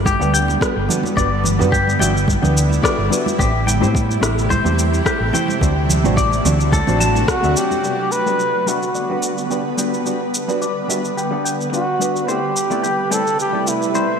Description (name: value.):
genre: sunset chillout.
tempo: 108 BPM.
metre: 4/4.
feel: swing 54% on 16ths.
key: G major.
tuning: A4 = 438 Hz.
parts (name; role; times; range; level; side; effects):
shimmering ambient pad; sustained chords; 0.0-14.2 s; C3 to B4; -23 LUFS; equal; chorus, built-in reverb.
hollow-body short-scale fingered electric bass; bass; 0.0-7.5 s; G1 to A2; -19 LUFS; equal; none.
semi-hollow electric guitar; arpeggios; 0.1-14.2 s; G4 to A5; -24 LUFS; left 3 dB; lush chorus, low-pass filter, ping-pong delay.
electronic kick drum; drums; 0.1-7.4 s; none; -20 LUFS; equal; overdrive.
electronic shaker and rim click; drums; 0.1-14.1 s; none; -24 LUFS; equal; overdrive, gated reverb.
congas; percussion; 0.1-7.8 s; none; -26 LUFS; right 5 dB; none.
hollow-body jazz guitar; accompaniment; 0.2-14.1 s; G3 to F#5; -23 LUFS; moving between left 5 dB and right 5 dB; auto-pan, low-pass filter, ping-pong delay.
breathy flugelhorn; melody; 7.3-14.2 s; E4 to B4; -20 LUFS; right 1 dB; ping-pong delay.
room: moderate plate reverb, RT60 2.6 s.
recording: bright 1980s-style digital production.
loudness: -15 LUFS.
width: side -6 dB against mid.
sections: 0.0-7.8 A section; 7.8-14.2 B section.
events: filter sweep on hollow-body jazz guitar 7.8-14.2; filter sweep on clean electric guitar 7.8-14.2.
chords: 0.0 Gmaj7; 3.4 Am7; 5.6 D7; 7.8 Gmaj7; 12.3 Am7.